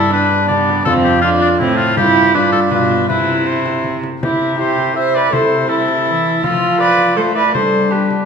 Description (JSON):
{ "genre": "classical, renaissance-style consort dance", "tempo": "162 BPM", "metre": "3/4", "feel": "straight", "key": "C major", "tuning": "A4 = 440 Hz", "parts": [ { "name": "clear oboe", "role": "melody", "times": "0.0-8.3 s", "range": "D4 to E5", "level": "-17 LUFS", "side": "left 4 dB", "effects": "none" }, { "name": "rich viola", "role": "second line", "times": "0.0-8.3 s", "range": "B3 to C5", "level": "-17 LUFS", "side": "right 5 dB", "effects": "none" }, { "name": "bright trombone", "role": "accompaniment", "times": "0.0-8.3 s", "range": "D4 to F4", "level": "-18 LUFS", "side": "left 1 dB", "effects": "none" }, { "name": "concert harp", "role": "accompaniment", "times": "0.0-8.3 s", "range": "F2 to A4", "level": "-25 LUFS", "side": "left 6 dB", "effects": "none" }, { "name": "rich cello", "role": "bass", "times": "0.0-8.3 s", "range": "F2 to A3", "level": "-22 LUFS", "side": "right 2 dB", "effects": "none" }, { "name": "frame drum", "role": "percussion", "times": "0.3-8.3 s", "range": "none", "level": "-27 LUFS", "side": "left 2 dB", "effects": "none" } ], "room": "wet recital hall reverb, RT60 1.5 s", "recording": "recorded in a church or concert hall", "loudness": "-12 LUFS", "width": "side -6 dB against mid", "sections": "0.0-4.2 A section; 4.2-8.3 B section", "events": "none", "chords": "0.0 G; 0.9 F; 2.0 G7sus4; 2.3 G7; 3.1 C; 5.3 Am/C; 6.4 F; 7.5 G" }